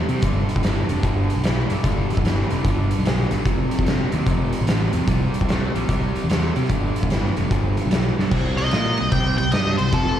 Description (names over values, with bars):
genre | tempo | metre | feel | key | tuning
blues rock power trio and southern rock | 148 BPM | 4/4 | swing 64% on 8ths | C mixolydian | A4 = 435 Hz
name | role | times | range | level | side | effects
distorted electric guitar | riff | 0.0-10.2 s | F2 to Bb4 | -25 LUFS | equal | distortion
fuzz fingered electric bass | bass | 0.0-10.2 s | F1 to C3 | -22 LUFS | equal | overdrive
oversized low-tuned drum kit | drums | 0.1-10.0 s | crash cymbal, hi-hat, kick drum, ride cymbal, snare drum | -22 LUFS | equal | none
octave-fuzz lead guitar | melody | 8.6-10.2 s | A4 to G5 | -23 LUFS | left 1 dB | distortion
room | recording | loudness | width
little or no reverb | live gig heard through the venue's PA, recital hall reverb | -18 LUFS | side -10 dB against mid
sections
0.0-8.3 A section; 8.3-10.2 B section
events
drum fill 8.1; lead electric guitar solo 8.3-10.2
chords
0.2 G; 3.5 F; 5.1 C; 6.7 G; 8.3 C5